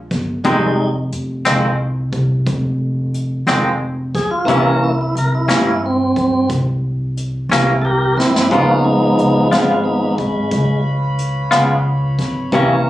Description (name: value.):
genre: slow blues.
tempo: 60 BPM (dotted quarters).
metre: 12/8.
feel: straight.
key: unclear.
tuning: A4 = 439 Hz.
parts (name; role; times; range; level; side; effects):
upright bass; bass; 0.0-12.9 s; F1 to G2; -19 LUFS; equal; none.
jazz brush drum kit; drums; 0.1-12.7 s; hi-hat, kick drum, snare drum; -23 LUFS; equal; none.
tonewheel organ; sustained chords; 0.4-12.9 s; E3 to Bb4; -15 LUFS; equal; overdrive.
twangy electric guitar; accompaniment; 0.5-12.7 s; F2 to F4; -15 LUFS; left 1 dB; harmonic tremolo.
warm horn section; sustained chords; 8.5-12.9 s; Bb4 to Cb6; -27 LUFS; equal; none.
room: moderate club reverb, RT60 0.5 s.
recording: recorded on a phone in the room, club reverb.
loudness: -14 LUFS.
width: side -14 dB against mid.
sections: 0.0-12.9 A section.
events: tonewheel organ solo 0.0-12.9; drum fill 8.2-8.5.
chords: 0.4 Fm7; 4.5 C7b9; 8.5 Db7.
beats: | 0.45 1.46 2.46 3.47 | 4.48 5.49 6.50 7.50 | 8.51 9.52 10.52 11.53 | 12.53.